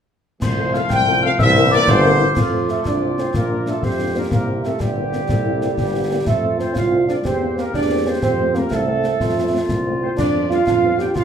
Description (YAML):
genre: military-style march for wind band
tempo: 123 BPM (dotted quarters)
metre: 6/8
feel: straight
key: F major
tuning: A4 = 439 Hz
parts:
  - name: warm trumpet section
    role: melody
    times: 0.4-11.2 s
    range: F4 to G5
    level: -24 LUFS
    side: equal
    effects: none
  - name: glockenspiel with rubber mallets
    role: second line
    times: 0.4-2.3 s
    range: C6 to G6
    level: -26 LUFS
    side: left 2 dB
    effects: none
  - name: mellow woodwind section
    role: second line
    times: 0.4-11.2 s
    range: D4 to G5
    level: -26 LUFS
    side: left 1 dB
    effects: none
  - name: mellow trombone section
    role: sustained chords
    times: 0.4-2.2 s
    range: E3 to Bb3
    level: -26 LUFS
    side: left 1 dB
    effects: none
  - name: warm tuba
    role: bass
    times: 0.4-11.2 s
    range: G1 to F2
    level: -23 LUFS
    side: right 1 dB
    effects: none
  - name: concert snare drum, clash cymbals and concert bass drum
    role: drums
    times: 0.4-11.2 s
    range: none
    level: -23 LUFS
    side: left 2 dB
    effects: none
  - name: dark French horn section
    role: accompaniment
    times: 0.6-11.1 s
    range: G3 to Bb4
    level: -27 LUFS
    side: left 5 dB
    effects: none
  - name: clear euphonium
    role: second line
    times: 2.4-11.2 s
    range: F3 to G4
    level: -21 LUFS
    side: right 4 dB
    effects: none
room: wet large studio reverb, RT60 0.8 s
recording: heard from further back in the room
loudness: -16 LUFS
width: side -8 dB against mid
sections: 0.4-2.4 A section; 2.4-11.2 B section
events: none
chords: 0.4 F/C; 1.4 C7; 2.4 F; 3.3 Bb; 4.3 C7; 6.3 F; 7.2 C7/E; 8.2 F; 10.2 G7/F